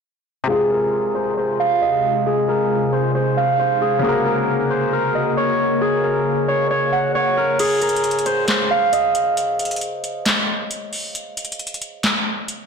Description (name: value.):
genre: hip hop, trap.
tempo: 135 BPM.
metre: 4/4.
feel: half-time.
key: F phrygian.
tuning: A4 = 439 Hz.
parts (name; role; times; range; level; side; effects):
bright grand piano; accompaniment; 0.4-7.6 s; C3 to Bb4; -25 LUFS; left 3 dB; low-pass filter.
Celtic harp; melody; 0.5-10.7 s; Ab4 to Gb5; -18 LUFS; right 1 dB; low-pass filter.
glassy FM pad; sustained chords; 1.2-7.6 s; C3 to F5; -24 LUFS; left 2 dB; ensemble chorus, built-in reverb, low-pass filter.
booming analog drum machine; drums; 7.6-12.6 s; crash cymbal, handclaps, hi-hat, snare drum; -22 LUFS; left 1 dB; none.
room: moderate lush hall reverb, RT60 1.9 s.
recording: blown-out, overdriven recording, overdrive.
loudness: -17 LUFS.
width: side -6 dB against mid.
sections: 0.5-7.6 A section; 7.6-12.7 B section.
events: filter sweep 0.5-7.6; kick muted 7.6-12.7; break 9.4-12.7.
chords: 0.5 Fm; 4.0 Gb; 7.6 N.C..